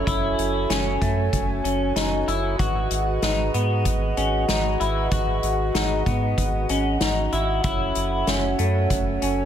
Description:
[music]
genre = dream pop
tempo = 95 BPM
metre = 4/4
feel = straight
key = F# dorian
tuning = A4 = 441 Hz
[part]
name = mellow large flute ensemble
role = sustained chords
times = 0.0-9.5 s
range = C#4 to G#5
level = -26 LUFS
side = right 2 dB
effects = shimmer reverb
[part]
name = semi-hollow electric guitar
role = arpeggios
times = 0.0-9.5 s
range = A3 to F#4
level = -26 LUFS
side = left 2 dB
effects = lush chorus, digital delay, shimmer reverb
[part]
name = round analog bass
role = bass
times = 0.0-9.5 s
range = F#1 to G#2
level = -26 LUFS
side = equal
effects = none
[part]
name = soft-mallet drum kit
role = drums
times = 0.1-9.4 s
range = hi-hat, kick drum, snare drum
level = -26 LUFS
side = equal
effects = none
[sound]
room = moderate plate reverb, RT60 1.4 s, studio reverb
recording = none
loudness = -20 LUFS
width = side -9 dB against mid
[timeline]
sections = 0.0-9.5 A section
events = none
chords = 0.0 F#m7; 2.6 G#m7; 7.6 F#m7

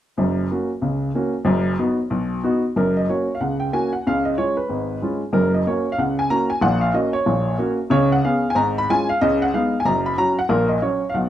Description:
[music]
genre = jazz, stride piano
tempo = 186 BPM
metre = 4/4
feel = swing 62% on 8ths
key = F# major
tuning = A4 = 440 Hz
[part]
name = warm grand piano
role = solo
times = 0.2-11.3 s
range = F#1 to B5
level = -18 LUFS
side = equal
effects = none
[sound]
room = moderate club reverb, RT60 0.6 s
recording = none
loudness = -18 LUFS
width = side -11 dB against mid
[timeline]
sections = 0.2-2.8 A section; 2.8-11.3 B section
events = none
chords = 0.2 F#; 1.5 B/F#; 2.8 F#; 4.0 C#7; 5.3 F#; 6.6 F#/A#; 7.9 C#5; 8.6 C#/G#; 9.2 C#sus2; 9.9 F#5; 10.5 F#/A#

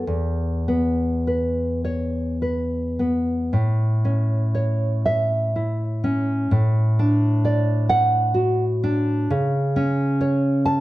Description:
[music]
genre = romantic piece for solo classical guitar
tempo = 49-67 BPM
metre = 3/4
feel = rubato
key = A major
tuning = A4 = 439 Hz
[part]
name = nylon-string guitar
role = solo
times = 0.0-10.8 s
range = E2 to A5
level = -19 LUFS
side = equal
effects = none
[sound]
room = moderate recital hall reverb, RT60 1.3 s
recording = dark, warm production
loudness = -19 LUFS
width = side -16 dB against mid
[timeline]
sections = 0.0-3.5 A section; 3.5-10.8 B section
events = none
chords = 0.1 E5; 3.5 A; 6.5 D/A; 9.3 N.C.

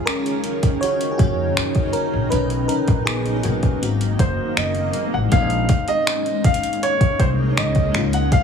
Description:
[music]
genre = contemporary R&B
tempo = 80 BPM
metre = 4/4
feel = straight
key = Bb minor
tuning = A4 = 440 Hz
[part]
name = FM electric piano with soft pad layer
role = accompaniment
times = 0.0-8.4 s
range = Gb3 to Db5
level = -25 LUFS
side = left 1 dB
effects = chorus
[part]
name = granular cloud pad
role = sustained chords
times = 0.0-8.4 s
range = Db3 to Eb4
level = -26 LUFS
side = equal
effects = built-in reverb, sidechain pumping
[part]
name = swell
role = sound effects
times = 3.7-5.3 s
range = none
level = -32 LUFS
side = equal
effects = none
[part]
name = smooth R&B drum kit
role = drums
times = 0.1-8.4 s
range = finger snaps, hi-hat, kick drum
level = -20 LUFS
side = equal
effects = none
[part]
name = upright bass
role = bass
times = 1.2-8.4 s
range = Gb1 to Gb2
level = -22 LUFS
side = left 1 dB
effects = none
[part]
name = warm concert grand piano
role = melody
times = 4.2-8.4 s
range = C5 to Gb5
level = -22 LUFS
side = equal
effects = tape echo
[sound]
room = light reverb, digital ambience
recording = heavily compressed radio sound, studio ambience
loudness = -17 LUFS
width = side -7 dB against mid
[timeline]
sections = 0.0-5.3 A section; 5.3-8.4 B section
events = FM electric piano solo 0.0-5.3; swell 3.7-5.3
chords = 0.0 Ebm7; 2.3 Bmaj7; 3.8 Ab9; 5.3 Bbm11

